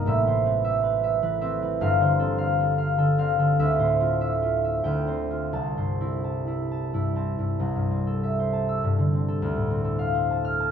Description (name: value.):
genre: classical, solo harp piece.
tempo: 82-103 BPM.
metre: 3/4.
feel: rubato.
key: C major.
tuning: A4 = 440 Hz.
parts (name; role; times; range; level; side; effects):
concert harp; solo; 0.0-10.7 s; G1 to F6; -22 LUFS; equal; none.
room: moderate recital hall reverb, RT60 1.3 s.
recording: close, detailed microphones.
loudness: -22 LUFS.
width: side -8 dB against mid.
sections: 0.0-7.6 A section; 7.6-10.7 B section.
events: none.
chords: 0.1 Amadd9; 1.8 G9sus4; 3.6 Dm9; 4.8 Dm11; 5.5 C6; 8.8 Gsus24; 9.4 Dm7.